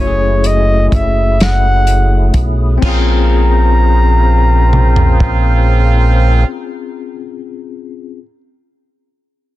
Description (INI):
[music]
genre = slow six-eight R&B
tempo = 42 BPM (dotted quarters)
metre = 6/8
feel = straight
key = unclear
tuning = A4 = 439 Hz
[part]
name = breathy flugelhorn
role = melody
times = 0.0-6.5 s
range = Db5 to Bb5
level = -18 LUFS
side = equal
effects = none
[part]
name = overdriven tine electric piano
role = accompaniment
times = 0.0-8.2 s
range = A3 to Ab4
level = -20 LUFS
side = left 10 dB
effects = fast tremolo
[part]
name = percussive tonewheel organ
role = sustained chords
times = 0.0-6.4 s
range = Gb3 to C5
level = -24 LUFS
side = right 1 dB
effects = chorus vibrato, slow rotary speaker
[part]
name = round analog bass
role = bass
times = 0.0-6.4 s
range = Gb1 to Cb2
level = -11 LUFS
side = equal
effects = none
[part]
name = warm soul drum kit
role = drums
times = 0.4-5.4 s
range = crash cymbal, hi-hat, kick drum, snare drum, toms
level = -16 LUFS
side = equal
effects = none
[part]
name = warm horn section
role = stabs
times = 2.8-6.4 s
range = Db3 to F4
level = -22 LUFS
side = right 6 dB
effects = none
[sound]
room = studio ambience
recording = dense, heavily limited modern master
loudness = -9 LUFS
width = side -16 dB against mid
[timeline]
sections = 0.0-2.8 A section; 2.8-5.7 B section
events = none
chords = 0.0 Gbm9; 2.8 Bbm9